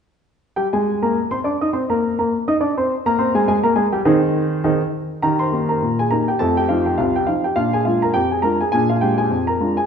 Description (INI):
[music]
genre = ragtime piano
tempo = 103 BPM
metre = 2/4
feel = swing 57% on 16ths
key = Eb major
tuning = A4 = 436 Hz
[part]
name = warm upright piano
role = solo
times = 0.6-9.9 s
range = C2 to Eb6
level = -16 LUFS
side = equal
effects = none
[sound]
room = wet recital hall reverb, RT60 1.4 s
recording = recorded in a church or concert hall, nothing above 10.3 kHz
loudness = -16 LUFS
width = side -7 dB against mid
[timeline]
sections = 0.6-5.2 A section; 5.2-9.9 B section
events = none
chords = 0.6 Eb5; 2.9 Ab; 5.2 Eb; 6.4 F7; 7.6 Bb7